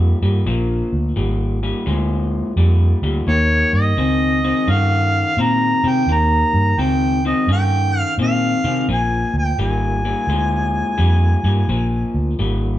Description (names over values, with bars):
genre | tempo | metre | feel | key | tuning
electric blues shuffle | 86 BPM | 4/4 | swing 66% on 8ths | unclear | A4 = 439 Hz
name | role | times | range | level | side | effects
electric guitar through a small old amp | riff | 0.0-12.8 s | Bb2 to Db4 | -21 LUFS | left 2 dB | none
vintage muted fingered electric bass | bass | 0.0-12.8 s | Ab1 to C3 | -18 LUFS | equal | none
mellow harmonica | melody | 3.3-12.4 s | Db5 to Bb5 | -20 LUFS | right 1 dB | none
room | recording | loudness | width
light reverb | band playing live in one room | -15 LUFS | side -13 dB against mid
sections
0.0-12.8 A section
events
none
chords
0.0 Bb13; 3.3 Eb13; 8.9 Bb6